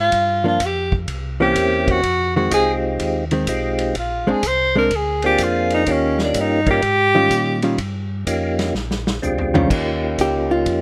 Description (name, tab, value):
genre	soul jazz organ trio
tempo	125 BPM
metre	4/4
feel	swing 66% on 8ths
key	Eb mixolydian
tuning	A4 = 440 Hz
part	warm tenor saxophone	melody	0.0-7.8 s	Db4 to C5	-20 LUFS	equal	none
part	mellow tonewheel organ	bass	0.0-10.8 s	Bb1 to Bb2	-28 LUFS	equal	slow rotary speaker
part	vintage drum kit	drums	0.1-10.8 s	crash cymbal, hi-hat, kick drum, ride cymbal, snare drum, toms	-29 LUFS	equal	none
part	hollow-body jazz guitar	accompaniment	0.4-10.8 s	Eb3 to G4	-21 LUFS	equal	none
part	percussive tonewheel organ	melody	1.4-10.8 s	Ab3 to Bb4	-23 LUFS	equal	slow rotary speaker
room	studio reverb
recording	rough home demo mix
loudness	-19 LUFS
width	mono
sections	0.0-9.7 A section; 9.7-10.8 A section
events	tenor saxophone solo 0.0-9.7; drum fill 8.7-9.7; hollow-body jazz guitar solo 9.7-10.8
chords	0.1 Gm7; 1.1 C7b9; 2.0 Fm7; 4.0 Bb9; 5.9 Eb9; 8.7 Bb13; 9.7 Eb9